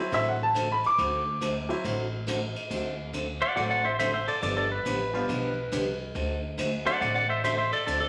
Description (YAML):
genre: country, western swing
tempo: 139 BPM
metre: 4/4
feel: swing 65% on 8ths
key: D mixolydian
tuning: A4 = 440 Hz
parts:
  - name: bright upright piano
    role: accompaniment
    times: 0.0-7.0 s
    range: F3 to D6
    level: -30 LUFS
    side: equal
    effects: none
  - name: picked steel-string acoustic guitar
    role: accompaniment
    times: 0.1-8.1 s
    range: D3 to A4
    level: -35 LUFS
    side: equal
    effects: none
  - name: upright bass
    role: bass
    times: 0.1-8.1 s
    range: G1 to D2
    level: -37 LUFS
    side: equal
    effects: none
  - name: vintage brush drum kit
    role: drums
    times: 0.1-8.0 s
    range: hi-hat, kick drum, ride cymbal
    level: -39 LUFS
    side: equal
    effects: none
  - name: pedal steel guitar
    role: second line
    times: 3.4-8.1 s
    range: A4 to F#5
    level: -29 LUFS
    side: equal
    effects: none
room: wet large studio reverb, RT60 0.8 s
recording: none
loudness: -28 LUFS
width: mono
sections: 0.0-2.7 A section; 2.7-8.1 A section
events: upright piano solo 0.0-2.7; pedal steel guitar solo 2.7-8.1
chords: 0.0 D7; 4.4 G7; 6.2 D7